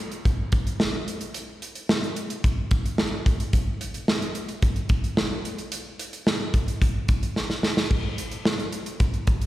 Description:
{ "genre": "pop", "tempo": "110 BPM", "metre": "4/4", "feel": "straight", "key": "none", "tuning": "none", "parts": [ { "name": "modern studio drum kit", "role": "drums", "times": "0.1-9.5 s", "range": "crash cymbal, hi-hat, kick drum, snare drum", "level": "-23 LUFS", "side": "equal", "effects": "none" } ], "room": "light reverb", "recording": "live gig heard through the venue's PA, recital hall reverb", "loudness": "-23 LUFS", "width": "side -15 dB against mid", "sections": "0.0-9.5 A section", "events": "drum fill 7.4-7.9", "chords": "none" }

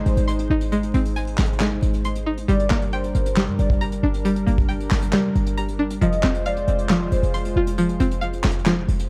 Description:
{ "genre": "hip hop, trap", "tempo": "136 BPM", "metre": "4/4", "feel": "half-time", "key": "unclear", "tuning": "A4 = 439 Hz", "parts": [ { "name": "warm analog pad", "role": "sustained chords", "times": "0.0-9.1 s", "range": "G3 to C5", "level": "-31 LUFS", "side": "equal", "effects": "chorus" }, { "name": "string-like resonator pluck", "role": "arpeggios", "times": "0.0-9.1 s", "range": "F3 to C6", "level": "-27 LUFS", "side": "equal", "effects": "chorus, low-pass filter, delay" }, { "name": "short 808-style bass", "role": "bass", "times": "0.0-9.1 s", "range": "F1 to G2", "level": "-25 LUFS", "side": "equal", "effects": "none" }, { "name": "warm velvety synth lead", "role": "second line", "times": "0.1-7.3 s", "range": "C5 to Eb5", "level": "-31 LUFS", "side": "equal", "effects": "chorus, delay" }, { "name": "soft brush drum kit", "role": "drums", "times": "0.1-9.1 s", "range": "handclaps, hi-hat, kick drum, snare drum", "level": "-28 LUFS", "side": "equal", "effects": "none" } ], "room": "light reverb, small room reverb", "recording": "dark, warm production, vinyl crackle", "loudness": "-21 LUFS", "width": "mono", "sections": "0.0-9.1 A section", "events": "none", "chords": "0.0 Ab; 2.5 Gm; 6.0 Fm" }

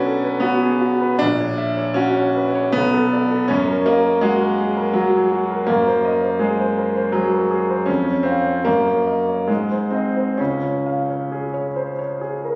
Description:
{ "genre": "classical, romantic character piece for solo piano", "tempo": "63-84 BPM", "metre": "3/4", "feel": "rubato", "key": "Db major from 3.5 s", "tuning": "A4 = 441 Hz", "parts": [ { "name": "warm grand piano", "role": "solo", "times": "0.0-12.6 s", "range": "A#1 to F5", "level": "-19 LUFS", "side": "equal", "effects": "none" } ], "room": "moderate recital hall reverb, RT60 1.3 s", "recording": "recorded on a phone in the room, studio reverb, compression", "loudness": "-19 LUFS", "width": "mono", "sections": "0.0-12.6 A section", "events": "none", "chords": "0.0 Bm; 1.2 F#7/A#; 2.8 Bm7; 3.5 Ebm/Gb; 5.7 Ab7/Gb; 7.9 Db/F; 8.7 Ebm7/Gb; 9.5 Ab; 10.4 Db" }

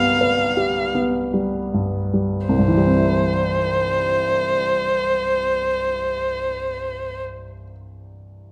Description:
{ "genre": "classical, romantic duo for violin and grand piano", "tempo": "36-46 BPM", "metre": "3/4", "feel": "rubato", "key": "C major", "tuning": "A4 = 440 Hz", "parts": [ { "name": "dark violin", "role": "melody", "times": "0.0-7.2 s", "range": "C5 to F5", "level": "-23 LUFS", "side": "equal", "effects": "none" }, { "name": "clear grand piano", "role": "accompaniment", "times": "0.0-8.5 s", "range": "C2 to B4", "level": "-24 LUFS", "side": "equal", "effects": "none" } ], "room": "moderate recital hall reverb, RT60 1.6 s", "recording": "none", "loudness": "-21 LUFS", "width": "mono", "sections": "0.0-2.5 A section; 2.5-6.5 B section", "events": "slowing down 0.0-2.5", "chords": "0.0 G7/C; 2.5 C" }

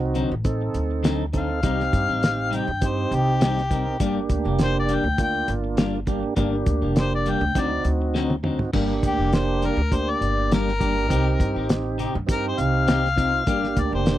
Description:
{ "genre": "straight-eighth soul blues", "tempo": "101 BPM", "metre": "4/4", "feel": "swing 54% on 16ths", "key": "G minor", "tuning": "A4 = 440 Hz", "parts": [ { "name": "tonewheel organ", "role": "accompaniment", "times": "0.0-14.2 s", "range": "Bb3 to Bb4", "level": "-26 LUFS", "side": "right 4 dB", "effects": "slow rotary speaker, overdrive" }, { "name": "clean electric guitar", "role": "stabs", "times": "0.0-14.1 s", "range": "G2 to G4", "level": "-29 LUFS", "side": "left 7 dB", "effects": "none" }, { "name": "upright bass", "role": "bass", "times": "0.0-14.2 s", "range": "F1 to G2", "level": "-25 LUFS", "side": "equal", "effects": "none" }, { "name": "cloth-damped thuddy drum kit", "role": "drums", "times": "0.1-14.2 s", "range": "crash cymbal, hi-hat, kick drum, snare drum, toms", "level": "-24 LUFS", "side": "equal", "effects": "none" }, { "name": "mellow harmonica", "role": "melody", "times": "1.4-14.2 s", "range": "G4 to G5", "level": "-25 LUFS", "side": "left 4 dB", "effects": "none" } ], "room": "little or no reverb", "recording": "dry, close 1970s-style studio recording", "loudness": "-20 LUFS", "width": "side -13 dB against mid", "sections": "0.0-8.7 A section; 8.7-14.2 B section", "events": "drum fill 8.1-8.7; harmonica solo 8.7-14.2", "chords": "0.0 D7b9; 1.6 Cm; 4.0 Gm; 7.5 D7b9; 8.7 Gm; 11.1 Cm; 13.5 Gm" }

